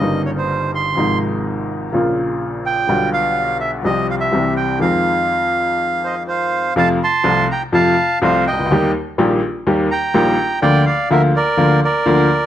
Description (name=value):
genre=tango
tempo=125 BPM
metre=4/4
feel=rubato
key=F minor, F major from 6.8 s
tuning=A4 = 440 Hz
part: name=bandoneon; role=melody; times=0.0-12.5 s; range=Bb4 to C6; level=-17 LUFS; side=right 2 dB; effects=none
part: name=clear upright piano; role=accompaniment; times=0.0-12.3 s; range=G1 to G4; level=-16 LUFS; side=left 1 dB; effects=none
room=moderate large studio reverb, RT60 0.9 s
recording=dark, warm production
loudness=-14 LUFS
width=side -11 dB against mid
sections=0.0-6.8 A section; 6.8-12.5 B section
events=none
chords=0.0 Eb7/G; 1.0 Ab6; 1.9 Bbm; 2.9 G7/B; 3.8 Csus4; 4.3 C; 4.8 Fm7; 6.8 F; 8.7 Eb; 10.6 Bb/D